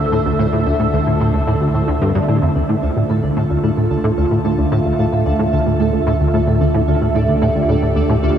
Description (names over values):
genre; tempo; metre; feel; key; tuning
ambient, sequencer-driven space music; 111 BPM; 4/4; straight; D minor; A4 = 440 Hz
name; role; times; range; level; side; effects
phased analog pad; sustained chords; 0.0-8.4 s; D3 to E5; -18 LUFS; right 1 dB; phaser, chorus, shimmer reverb
vibraphone with medium mallets; arpeggios; 0.0-8.4 s; C4 to D5; -27 LUFS; right 2 dB; auto-pan, tape echo, shimmer reverb
plucky analog bass; riff; 0.0-8.3 s; D2 to A2; -17 LUFS; equal; ensemble chorus, tape echo, shimmer reverb
analog drone; bass; 0.0-8.4 s; D2; -24 LUFS; equal; chorus
pulsing gated texture; texture; 0.0-8.4 s; A4 to A5; -30 LUFS; equal; chorus, built-in reverb, shimmer reverb
room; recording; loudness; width
wet huge ambient reverb, RT60 8.4 s; cassette tape; -14 LUFS; side -9 dB against mid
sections
0.0-8.4 A section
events
none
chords
0.0 Dmadd9